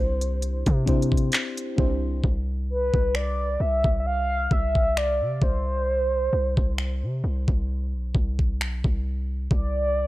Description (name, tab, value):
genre	contemporary R&B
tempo	66 BPM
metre	4/4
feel	swing 54% on 16ths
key	C major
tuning	A4 = 440 Hz
part	mellow horn-like synth lead	melody	0.0-10.1 s	B4 to F5	-26 LUFS	right 1 dB	chorus, tape echo
part	mellow FM electric piano	accompaniment	0.0-2.3 s	C4 to C5	-29 LUFS	left 2 dB	chorus
part	warm 808-style bass	bass	0.0-10.1 s	B1 to C3	-26 LUFS	equal	none
part	smooth R&B drum kit	drums	0.2-9.7 s	finger snaps, handclaps, hi-hat, kick drum	-24 LUFS	equal	none
room	little or no reverb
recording	dry, gritty hardware recording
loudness	-22 LUFS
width	side -17 dB against mid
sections	0.0-2.2 A section; 2.2-10.1 B section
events	none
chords	0.0 Cadd9; 5.4 N.C.